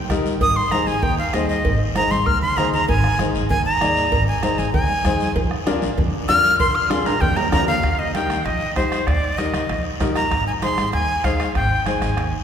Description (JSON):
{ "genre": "latin, cumbia", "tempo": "194 BPM", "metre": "4/4", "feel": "straight", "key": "Eb major", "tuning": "A4 = 439 Hz", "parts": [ { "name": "clear upright piano", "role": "accompaniment", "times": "0.1-12.1 s", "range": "D4 to D5", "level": "-25 LUFS", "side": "left 3 dB", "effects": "none" }, { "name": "upright bass", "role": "bass", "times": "0.1-12.3 s", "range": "Ab1 to F2", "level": "-25 LUFS", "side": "right 1 dB", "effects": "none" }, { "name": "bombo", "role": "percussion", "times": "0.1-12.3 s", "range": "none", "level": "-26 LUFS", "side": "equal", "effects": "none" }, { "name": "congas", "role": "percussion", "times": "0.1-12.3 s", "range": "none", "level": "-29 LUFS", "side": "right 1 dB", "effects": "none" }, { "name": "cowbell and timbales", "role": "percussion", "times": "0.1-12.3 s", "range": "none", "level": "-31 LUFS", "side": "right 4 dB", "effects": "none" }, { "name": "guiro", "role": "percussion", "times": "0.1-12.4 s", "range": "none", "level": "-36 LUFS", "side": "left 6 dB", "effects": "none" }, { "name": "breathy bright jazz flute", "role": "melody", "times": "0.4-12.3 s", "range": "C5 to F6", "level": "-21 LUFS", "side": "equal", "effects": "none" } ], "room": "wet church reverb, RT60 3.2 s", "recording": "recorded in a church or concert hall", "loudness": "-17 LUFS", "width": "side -8 dB against mid", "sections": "0.0-7.8 A section; 7.8-12.4 B section", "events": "flute solo 0.0-7.8; drum fill 2.1-2.9, 7.1-7.8", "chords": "0.4 Ab; 5.4 Bb; 7.8 Eb; 10.3 Ab" }